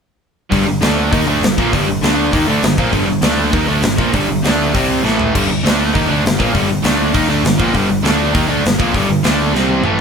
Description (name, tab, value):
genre	punk rock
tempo	199 BPM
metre	4/4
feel	straight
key	G minor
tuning	A4 = 438 Hz
part	crunchy overdriven guitar	riff	0.5-10.0 s	G2 to Eb4	-19 LUFS	equal	none
part	distorted electric guitar	riff	0.5-10.0 s	G2 to Eb4	-20 LUFS	left 7 dB	distortion
part	distorted electric guitar	riff	0.5-10.0 s	G2 to Eb4	-18 LUFS	right 6 dB	distortion
part	overdriven picked electric bass	bass	0.5-10.0 s	G1 to Eb2	-22 LUFS	equal	none
part	big rock drum kit	drums	0.5-9.9 s	crash cymbal, hi-hat, kick drum, snare drum, toms	-18 LUFS	left 1 dB	none
room	light reverb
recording	band playing live in one room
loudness	-12 LUFS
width	side -6 dB against mid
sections	0.5-10.0 A section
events	drum fill 5.0-5.3, 9.5-10.0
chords	0.5 G5; 0.8 D5; 1.1 Gm; 2.0 D5; 2.3 Gm; 3.2 D5; 3.5 Gm; 4.4 D5; 4.7 C5; 5.0 A5; 5.3 G5; 5.6 D5; 5.9 Gm; 6.8 D5; 7.1 Gm; 8.0 D5; 8.3 Gm; 9.2 D5; 9.5 C5